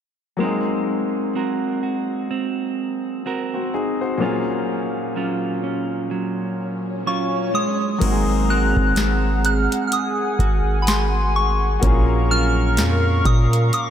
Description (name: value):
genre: contemporary R&B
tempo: 63 BPM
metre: 4/4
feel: swing 58% on 16ths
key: unclear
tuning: A4 = 440 Hz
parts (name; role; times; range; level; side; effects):
- clear grand piano; accompaniment; 0.4-13.9 s; Bb2 to C5; -25 LUFS; left 4 dB; none
- clean electric guitar; arpeggios; 0.4-13.9 s; Bb2 to Bb4; -25 LUFS; right 5 dB; spring reverb, diffuse ambient delay
- soft synth bell; melody; 7.1-13.9 s; Cb6 to Gb6; -24 LUFS; left 1 dB; chorus, phaser, diffuse ambient delay
- hollow soft pad; sustained chords; 8.0-13.9 s; Ab4 to Db6; -26 LUFS; equal; chorus, sidechain pumping
- long sustained 808-style bass; bass; 8.0-13.7 s; Ab1 to Bb2; -20 LUFS; equal; none
- booming analog drum machine; drums; 8.0-13.9 s; crash cymbal, hi-hat, kick drum, snare drum; -22 LUFS; equal; none
room: moderate cathedral reverb, RT60 5.6 s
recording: dreamy mix soaked in reverb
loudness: -18 LUFS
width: side -9 dB against mid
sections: 0.4-8.0 A section; 8.0-13.9 B section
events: none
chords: 0.4 Ab9; 4.2 Gbmaj7/Bb; 7.5 N.C.; 8.0 Ab9; 11.8 Gbmaj7/Bb